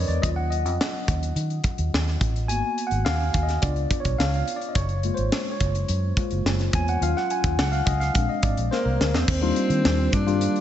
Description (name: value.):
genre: polished 1980s jazz-funk pop.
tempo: 106 BPM.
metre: 4/4.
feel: straight.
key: unclear.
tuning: A4 = 441 Hz.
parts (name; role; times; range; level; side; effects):
tine electric piano; accompaniment; 0.0-10.6 s; Eb3 to Ab5; -26 LUFS; left 2 dB; slow stereo tremolo, wide subtle chorus.
vintage muted fingered electric bass; bass; 0.0-10.5 s; Gb1 to Eb3; -24 LUFS; equal; none.
tight funk drum kit; drums; 0.1-10.6 s; crash cymbal, hi-hat, kick drum, snare drum; -26 LUFS; equal; none.
breathy alto saxophone; melody; 8.7-10.6 s; Bb3 to D4; -26 LUFS; left 1 dB; none.
room: moderate lush hall reverb, RT60 1.9 s, studio ambience.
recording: dreamy mix soaked in reverb, nothing above 8.0 kHz.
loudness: -21 LUFS.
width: side -11 dB against mid.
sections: 0.0-9.3 A section; 9.3-10.6 B section.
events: tine electric piano solo 0.0-9.3; drum fill 8.7-9.3.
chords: 0.2 Ebm9; 2.5 Abm7; 3.6 Db7b9; 4.8 Gbmaj7; 7.0 Ebm9; 8.1 Bb7; 9.3 Ebmaj9.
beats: | 0.23 0.80 1.36 1.93 | 2.49 3.06 3.63 4.19 | 4.76 5.32 5.89 6.45 | 7.02 7.58 8.15 8.71 | 9.28 9.84 10.41.